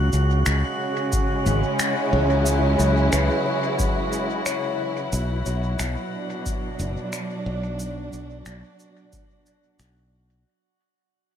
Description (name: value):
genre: ambient dub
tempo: 90 BPM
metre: 4/4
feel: straight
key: B dorian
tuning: A4 = 440 Hz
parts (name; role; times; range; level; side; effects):
- dark studio string section; sustained chords; 0.0-10.5 s; B2 to E4; -26 LUFS; right 1 dB; none
- modern bright fingered electric bass; bass; 0.0-10.4 s; F#1 to C#2; -22 LUFS; left 1 dB; none
- drifting glass-harmonics texture; texture; 0.0-10.5 s; F#4 to F#5; -31 LUFS; right 1 dB; chorus, built-in reverb
- electronic shaker and finger snaps; drums; 0.1-9.9 s; none; -30 LUFS; left 1 dB; dub echo
- electronic kick drum; drums; 1.1-9.3 s; none; -26 LUFS; left 1 dB; none
- handpan; arpeggios; 1.5-6.3 s; E3 to C#5; -31 LUFS; left 5 dB; tape echo
room: light reverb, digital ambience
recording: none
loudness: -21 LUFS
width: side -9 dB against mid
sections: 0.0-10.5 A section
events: fade-out 3.4-10.5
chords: 0.0 C#m7; 5.1 Bm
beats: 0.46 1.13 1.80 | 2.46 3.13 3.80 4.46 | 5.13 5.80 6.46 7.13 | 7.80 8.46 9.13 9.80